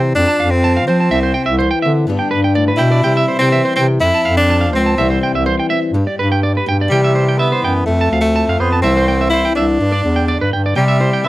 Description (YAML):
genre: highlife guitar band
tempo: 124 BPM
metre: 4/4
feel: straight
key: C major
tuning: A4 = 442 Hz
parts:
  - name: bright tenor saxophone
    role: melody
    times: 0.0-11.3 s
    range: G3 to E4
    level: -16 LUFS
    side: equal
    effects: none
  - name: picked old ladder-braced acoustic guitar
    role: accompaniment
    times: 0.0-11.3 s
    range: F2 to G4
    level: -21 LUFS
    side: left 4 dB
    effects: none
  - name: warm bass clarinet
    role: bass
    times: 0.0-11.2 s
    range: C2 to F3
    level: -16 LUFS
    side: equal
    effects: none
  - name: electric guitar at the edge of break-up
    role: arpeggios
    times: 0.3-11.3 s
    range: B4 to A5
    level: -19 LUFS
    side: right 4 dB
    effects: warbly pitch drift, slapback echo
room: light reverb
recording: dry, close 1970s-style studio recording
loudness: -12 LUFS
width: side -17 dB against mid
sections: 0.0-6.9 A section; 6.9-11.3 B section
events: none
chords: 0.1 F; 1.1 C; 2.1 G; 3.0 C; 4.0 F; 5.0 C; 5.9 G; 6.9 C; 7.9 F; 8.8 C; 9.8 G5; 10.8 C